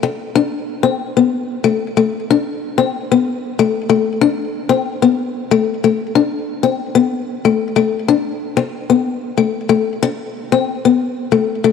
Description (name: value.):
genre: highlife.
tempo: 124 BPM (dotted quarters).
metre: 12/8.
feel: straight.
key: unclear.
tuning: A4 = 440 Hz.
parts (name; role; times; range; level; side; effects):
fingerpicked acoustic archtop guitar; solo; 0.0-11.7 s; A3 to D4; -14 LUFS; left 7 dB; none.
room: moderate plate reverb, RT60 3.5 s.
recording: none.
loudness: -14 LUFS.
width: side -6 dB against mid.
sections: 0.4-11.7 A section.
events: none.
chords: none.